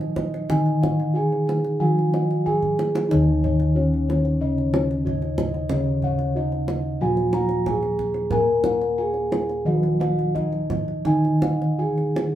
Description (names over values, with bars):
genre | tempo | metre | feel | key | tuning
Javanese gamelan | 92 BPM | 4/4 | straight | Eb slendro | A4 = 440 Hz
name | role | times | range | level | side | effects
gamelan-type bronze metallophone | melody | 0.0-12.3 s | Db4-25c to Bb4 | -25 LUFS | right 1 dB | none
gamelan-type bronze metallophone | accompaniment | 0.0-12.3 s | Db3-25c to Bb3 | -25 LUFS | equal | none
gamelan-type bossed gongs | arpeggios | 0.0-12.2 s | Db5-25c to Bb5 | -31 LUFS | left 2 dB | none
gamelan-type bronze metallophone | arpeggios | 0.0-12.3 s | Db5-25c to Bb5 | -33 LUFS | right 1 dB | none
gamelan-type bossed gongs | bass | 0.0-12.3 s | Eb2 to Bb4 | -25 LUFS | left 1 dB | none
kendang | percussion | 0.0-12.3 s | none | -29 LUFS | right 2 dB | none
room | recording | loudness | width
wet studio reverb, RT60 0.6 s | band playing live in one room | -20 LUFS | side -12 dB against mid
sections
0.0-12.3 A section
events
drum fill 2.5-3.1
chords
none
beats
| 0.50 1.16 1.81 2.46 | 3.11 3.76 4.42 5.07 | 5.72 6.37 7.03 7.68 | 8.33 8.99 9.66 10.36 | 11.06 11.79